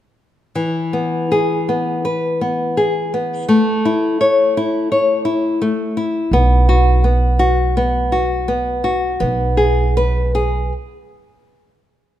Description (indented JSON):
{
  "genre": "fado-style ballad",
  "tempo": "83 BPM",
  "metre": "4/4",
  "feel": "uneven beats, rubato",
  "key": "E major",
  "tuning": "A4 = 440 Hz",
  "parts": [
    { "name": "nylon-string guitar", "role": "accompaniment", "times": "0.6-10.7 s", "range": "E3 to C#5", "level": "-16 LUFS", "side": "left 1 dB", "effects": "none" },
    { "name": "upright bass", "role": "bass", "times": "6.3-10.7 s", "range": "B1", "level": "-16 LUFS", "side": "right 1 dB", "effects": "none" }
  ],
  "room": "light reverb",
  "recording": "close, detailed microphones",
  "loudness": "-14 LUFS",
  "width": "side -12 dB against mid",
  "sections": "0.5-12.2 A section",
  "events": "stop 10.7-12.2",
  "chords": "0.5 E; 3.5 A; 6.3 B5; 9.2 G#m/B"
}